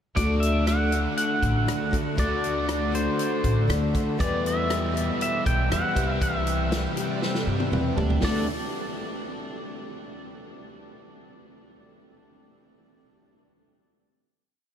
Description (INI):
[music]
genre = folk rock and heartland rock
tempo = 119 BPM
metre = 4/4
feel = straight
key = D mixolydian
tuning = A4 = 440 Hz
[part]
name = pedal steel guitar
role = melody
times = 0.2-8.5 s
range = C5 to G5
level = -29 LUFS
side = equal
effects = analog delay
[part]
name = picked plugged-in twelve-string acoustic guitar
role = accompaniment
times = 0.2-8.4 s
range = E2 to G4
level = -31 LUFS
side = left 3 dB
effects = none
[part]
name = cranked stack guitar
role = riff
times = 0.2-8.4 s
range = E2 to A4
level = -31 LUFS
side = equal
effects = overdrive, wide subtle chorus
[part]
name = upright bass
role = bass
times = 0.2-8.5 s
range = A1 to G2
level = -27 LUFS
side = equal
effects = none
[part]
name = natural country drum kit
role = drums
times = 0.2-8.3 s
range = hi-hat, kick drum, rim click, snare drum, toms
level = -30 LUFS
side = equal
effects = none
[part]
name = overdriven slide guitar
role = second line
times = 7.0-8.5 s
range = C4 to G5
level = -35 LUFS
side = right 2 dB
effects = lush chorus
[sound]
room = moderate huge ambient reverb, RT60 7.6 s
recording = dreamy mix soaked in reverb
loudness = -22 LUFS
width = side -9 dB against mid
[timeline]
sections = 0.2-8.2 verse; 8.2-10.2 final chord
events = drum fill 7.2-8.2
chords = 0.2 D; 4.2 Em; 6.0 Cmaj7; 8.2 D